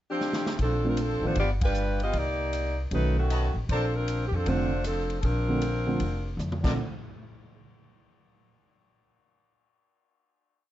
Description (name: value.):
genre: jazz, big band swing.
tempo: 155 BPM.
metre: 4/4.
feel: swing 65% on 8ths.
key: Bb major.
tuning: A4 = 443 Hz.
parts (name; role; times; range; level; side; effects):
bright saxophone section; melody; 0.1-6.4 s; D#3 to Eb5; -29 LUFS; equal; none.
swinging big-band drum kit; drums; 0.2-6.7 s; crash cymbal, hi-hat, kick drum, ride cymbal, rim click, snare drum, toms; -34 LUFS; equal; none.
upright bass; bass; 0.6-6.8 s; F1 to F2; -28 LUFS; equal; none.
warm concert grand piano; accompaniment; 0.8-6.8 s; D3 to D4; -30 LUFS; right 2 dB; none.
bright trumpet section; stabs; 1.6-3.9, 6.6-6.7 s; Bb4 to A5; -35 LUFS; left 1 dB; none.
room: light reverb.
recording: dark, warm production, nothing above 7.8 kHz.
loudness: -25 LUFS.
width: side -13 dB against mid.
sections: 0.0-0.6 pickup bar; 0.6-6.8 A section; 6.8-8.3 final hit.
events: drum fill 0.2-0.6, 6.4-6.8; band accent 1.6.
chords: 0.0 Fsus2; 0.6 Bbmaj9; 1.4 G7; 2.1 Cm9; 2.9 B9; 3.7 Bbmaj9; 6.8 N.C..